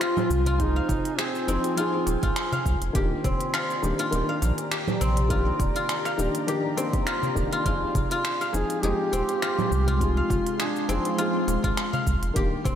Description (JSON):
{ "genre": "organic downtempo", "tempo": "102 BPM", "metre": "4/4", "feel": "swing 55% on 16ths", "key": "F dorian", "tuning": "A4 = 440 Hz", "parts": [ { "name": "warm duduk", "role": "melody", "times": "0.0-1.8, 8.5-11.1 s", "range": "C4 to Ab4", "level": "-29 LUFS", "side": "equal", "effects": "digital delay" }, { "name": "felt-muted upright piano", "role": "accompaniment", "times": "0.0-12.8 s", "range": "Eb3 to Ab4", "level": "-30 LUFS", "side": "left 2 dB", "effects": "sidechain pumping, digital delay" }, { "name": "ethereal airy pad", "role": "sustained chords", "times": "0.0-12.8 s", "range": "Ab3 to C6", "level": "-33 LUFS", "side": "equal", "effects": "ensemble chorus, built-in reverb, phaser, sidechain pumping" }, { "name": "guzheng", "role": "arpeggios", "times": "0.0-12.8 s", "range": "C4 to F5", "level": "-29 LUFS", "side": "left 1 dB", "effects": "digital delay, slapback echo" }, { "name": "organic electronic drum kit", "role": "drums", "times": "0.0-12.8 s", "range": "congas, finger snaps, hi-hat, shaker", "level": "-31 LUFS", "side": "right 3 dB", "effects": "overdrive" }, { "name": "warm sub bass", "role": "bass", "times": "0.3-12.8 s", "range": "Eb1 to C2", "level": "-26 LUFS", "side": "equal", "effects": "sidechain pumping" }, { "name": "darbuka", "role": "percussion", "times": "0.3-12.8 s", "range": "none", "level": "-35 LUFS", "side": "left 2 dB", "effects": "none" }, { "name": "electronic kick drum", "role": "drums", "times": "0.6-12.8 s", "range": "none", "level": "-28 LUFS", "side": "equal", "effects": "none" } ], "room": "wet scoring stage reverb, RT60 2.0 s", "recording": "big arena sound", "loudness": "-22 LUFS", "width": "side -9 dB against mid", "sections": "0.0-12.8 A section", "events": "none", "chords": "0.0 Fm7; 3.0 Ebmaj7; 7.7 Fm7" }